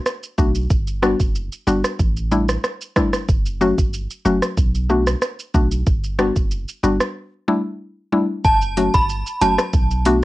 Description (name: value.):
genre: dancehall.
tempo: 93 BPM.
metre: 4/4.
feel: straight.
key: F# phrygian.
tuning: A4 = 440 Hz.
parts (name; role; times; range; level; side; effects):
afro-pop drum kit; drums; 0.1-10.2 s; hi-hat, kick drum, rim click, shaker; -20 LUFS; right 1 dB; cassette tape.
mallet-like synth pluck; accompaniment; 0.4-10.2 s; F#3 to F#4; -19 LUFS; left 2 dB; chorus, sidechain pumping.
punchy sub bass; bass; 0.4-10.2 s; F#1 to B1; -22 LUFS; equal; none.
synth chime; melody; 8.4-9.6 s; A5 to B5; -19 LUFS; right 1 dB; ensemble chorus, tremolo, cassette tape, tape echo.
bongos; percussion; 8.8-9.7 s; none; -30 LUFS; right 4 dB; none.
room: light reverb.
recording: home recording on cassette.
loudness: -17 LUFS.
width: side -18 dB against mid.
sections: 0.0-8.4 A section; 8.4-10.2 B section.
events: break 7.2-8.4.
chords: 0.0 Bm7; 0.7 Gmaj7; 2.0 A7sus4; 3.3 F#m; 4.6 Bm7; 5.9 Gmaj7; 7.2 A7sus4; 8.4 F#m; 9.7 Bm7.